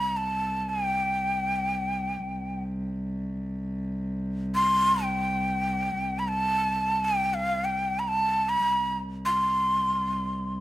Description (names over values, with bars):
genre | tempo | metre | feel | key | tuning
Arabic maqam ensemble | free time | none | none | C maqam rast | A4 = 439 Hz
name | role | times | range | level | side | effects
breathy bright ney | melody | 0.0-10.6 s | F5 to C6 | -25 LUFS | equal | none
dark cello | drone | 0.0-10.6 s | C2 | -32 LUFS | equal | none
room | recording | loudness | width
light reverb | close, detailed microphones | -25 LUFS | side -15 dB against mid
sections
0.0-10.6 A section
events
none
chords
none